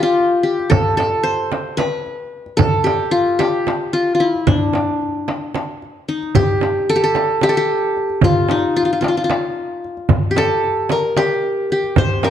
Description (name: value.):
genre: Turkish makam ensemble.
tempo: 224 BPM (eighths).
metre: 7/8.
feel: straight.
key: G makam nihavent from 6.3 s.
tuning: A4 = 442 Hz.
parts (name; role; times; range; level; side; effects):
qanun; melody; 0.0-12.3 s; D4 to C5; -17 LUFS; left 1 dB; none.
darbuka; percussion; 0.2-12.3 s; none; -21 LUFS; left 2 dB; none.
frame drum; percussion; 0.7-12.3 s; none; -21 LUFS; right 6 dB; none.
room: moderate recital hall reverb, RT60 1.6 s.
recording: dark, warm production.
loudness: -15 LUFS.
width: side -10 dB against mid.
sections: 0.0-6.3 A section; 6.3-12.3 B section.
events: none.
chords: none.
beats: 0.18 0.45 | 0.72 0.98 1.25 1.52 1.79 2.06 2.33 | 2.59 2.86 3.13 3.40 3.67 3.94 4.20 | 4.47 4.74 5.01 5.28 5.54 5.81 6.08 | 6.35 6.62 6.88 7.15 7.42 7.69 7.96 | 8.22 8.49 8.76 9.03 9.29 9.56 9.83 | 10.10 10.36 10.63 10.90 11.17 11.44 11.70 | 11.97 12.24.